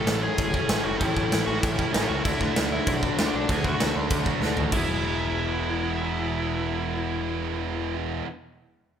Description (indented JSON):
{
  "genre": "punk rock",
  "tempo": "194 BPM",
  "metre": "4/4",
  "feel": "straight",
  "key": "E major",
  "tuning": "A4 = 440 Hz",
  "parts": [
    { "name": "dark smooth lead guitar", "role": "melody", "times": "0.0-8.0 s", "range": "D4 to A4", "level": "-30 LUFS", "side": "equal", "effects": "overdrive" },
    { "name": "raw garage guitar", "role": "riff", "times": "0.0-8.3 s", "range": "E2 to D4", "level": "-31 LUFS", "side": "left 7 dB", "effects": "overdrive" },
    { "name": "tight distorted guitar", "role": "riff", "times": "0.0-8.3 s", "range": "A2 to F#4", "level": "-30 LUFS", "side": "right 8 dB", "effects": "distortion" },
    { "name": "growling picked electric bass", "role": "bass", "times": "0.1-8.2 s", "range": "E1 to D2", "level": "-31 LUFS", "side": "right 1 dB", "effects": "overdrive" },
    { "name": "big rock drum kit", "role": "drums", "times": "0.1-4.8 s", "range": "crash cymbal, kick drum, snare drum, toms", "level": "-26 LUFS", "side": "right 1 dB", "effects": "none" }
  ],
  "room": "light reverb",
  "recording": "band playing live in one room",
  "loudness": "-23 LUFS",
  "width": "side -8 dB against mid",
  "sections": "0.0-4.7 A section; 4.7-7.2 B section",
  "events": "drum fill 4.4-4.7",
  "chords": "0.0 A; 2.2 D; 4.7 E"
}